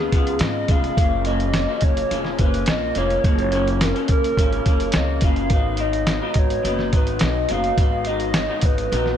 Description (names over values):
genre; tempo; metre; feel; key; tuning
indie pop, bedroom pop; 106 BPM; 4/4; straight; F# major; A4 = 436 Hz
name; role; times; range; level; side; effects
warbly nostalgic lead; melody; 0.0-9.2 s; G#4 to E#5; -24 LUFS; equal; lush chorus, ping-pong delay
electric guitar through a small old amp; accompaniment; 0.0-9.2 s; F#2 to E#4; -25 LUFS; left 4 dB; wide subtle chorus, warbly pitch drift
upright bass; bass; 0.0-9.1 s; E#1 to G#2; -25 LUFS; right 1 dB; none
lo-fi sampler-style drum kit; drums; 0.1-9.1 s; hi-hat, kick drum, snare drum; -20 LUFS; equal; none
room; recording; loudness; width
light reverb, digital ambience; none; -18 LUFS; side -9 dB against mid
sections
0.0-9.2 A section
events
none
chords
0.0 C#7; 1.0 F#maj7; 5.5 G#m7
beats
0.41 | 0.97 1.54 2.11 2.68 | 3.24 3.81 4.38 4.95 | 5.51 6.08 6.65 7.21 | 7.78 8.35 8.91